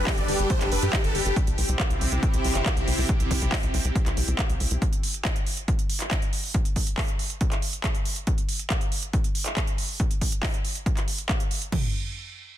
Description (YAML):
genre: uplifting trance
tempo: 139 BPM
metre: 4/4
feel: straight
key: unclear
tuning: A4 = 440 Hz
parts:
  - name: supersaw chords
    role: melody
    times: 0.0-1.3 s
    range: G4 to D5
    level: -28 LUFS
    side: left 1 dB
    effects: lush chorus, sidechain pumping, digital delay
  - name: supersaw pad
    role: sustained chords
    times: 0.0-4.8 s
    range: C3 to B4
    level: -30 LUFS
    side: equal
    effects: phaser, sidechain pumping
  - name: tight sequencer bass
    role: bass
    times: 0.0-4.8 s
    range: G1 to G2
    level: -26 LUFS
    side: equal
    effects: sidechain pumping
  - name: techno drum kit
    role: drums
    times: 0.1-11.8 s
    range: crash cymbal, kick drum, toms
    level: -26 LUFS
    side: equal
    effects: none
  - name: techno drum kit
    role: drums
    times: 0.1-11.7 s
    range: handclaps, hi-hat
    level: -29 LUFS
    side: right 1 dB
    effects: sidechain pumping on hats, sidechain pumping on cymbals, soft clipping on snare
room: little or no reverb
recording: dense, heavily limited modern master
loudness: -23 LUFS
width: side -12 dB against mid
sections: 0.0-11.7 A section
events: none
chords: 0.0 Gadd9; 1.4 C; 4.8 N.C.